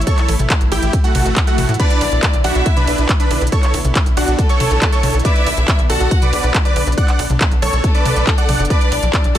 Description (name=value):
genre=uplifting trance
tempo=139 BPM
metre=4/4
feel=straight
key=B minor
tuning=A4 = 442 Hz
part: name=lush unison pad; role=sustained chords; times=0.0-9.4 s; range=D3 to E4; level=-27 LUFS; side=left 1 dB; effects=chorus, sidechain pumping
part: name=tight sequencer bass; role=bass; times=0.0-9.4 s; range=F#1 to A2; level=-18 LUFS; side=equal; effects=sidechain pumping
part: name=techno drum kit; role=drums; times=0.0-9.4 s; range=crash cymbal, handclaps, hi-hat, ride cymbal, toms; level=-21 LUFS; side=equal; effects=sidechain pumping on hats, sidechain pumping on cymbals, sidechain pumping on toms
part: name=dense compressed supersaw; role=melody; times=0.1-9.4 s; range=A3 to F#5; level=-21 LUFS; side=right 1 dB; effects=vintage 12-bit sampler grit, sidechain pumping
part: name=analog pluck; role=second line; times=0.1-9.4 s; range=F#5 to F#6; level=-27 LUFS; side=right 2 dB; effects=chorus, sidechain pumping, ping-pong delay
part: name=electronic kick drum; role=drums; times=0.1-9.2 s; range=none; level=-16 LUFS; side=equal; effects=none
part: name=clear studio violin section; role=second line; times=1.8-9.4 s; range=A3 to F#5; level=-22 LUFS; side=left 2 dB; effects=ping-pong delay
room=little or no reverb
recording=none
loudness=-13 LUFS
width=side -12 dB against mid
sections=0.0-9.4 A section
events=none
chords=0.0 A; 1.8 Bm; 8.7 Em7